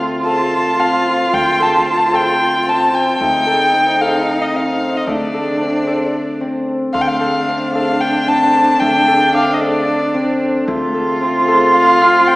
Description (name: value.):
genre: contemporary instrumental, chamber music in an uneven meter.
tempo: 225 BPM (eighths).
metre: 7/8.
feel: straight.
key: D phrygian.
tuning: A4 = 442 Hz.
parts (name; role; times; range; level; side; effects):
dark cello; second line; 0.0-12.4 s; D4 to F4; -17 LUFS; right 1 dB; none.
concert harp; arpeggios; 0.0-12.4 s; A3 to A4; -19 LUFS; left 1 dB; none.
upright bass; bass; 0.0-12.4 s; D2; -32 LUFS; equal; none.
warm violin; melody; 0.3-12.4 s; D5 to A5; -16 LUFS; left 1 dB; none.
glockenspiel with soft plastic mallets; texture; 6.9-12.4 s; C6 to F6; -24 LUFS; left 1 dB; none.
room: wet concert hall reverb, RT60 1.9 s.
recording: recorded in a church or concert hall, small speaker sound.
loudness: -12 LUFS.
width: side -20 dB against mid.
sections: 0.0-6.9 A section; 6.9-12.4 B section.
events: none.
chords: 0.0 D5.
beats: 0.26 0.52 0.79 1.06 | 1.33 1.59 1.86 2.13 2.40 2.67 2.93 | 3.20 3.47 3.73 4.00 4.27 4.54 4.80 | 5.07 5.34 5.61 5.87 6.14 6.41 6.67 | 6.94 7.21 7.47 7.74 8.01 8.28 8.54 | 8.81 9.07 9.34 9.61 9.87 10.14 10.41 | 10.67 10.94 11.21 11.47 11.74 12.01 12.27.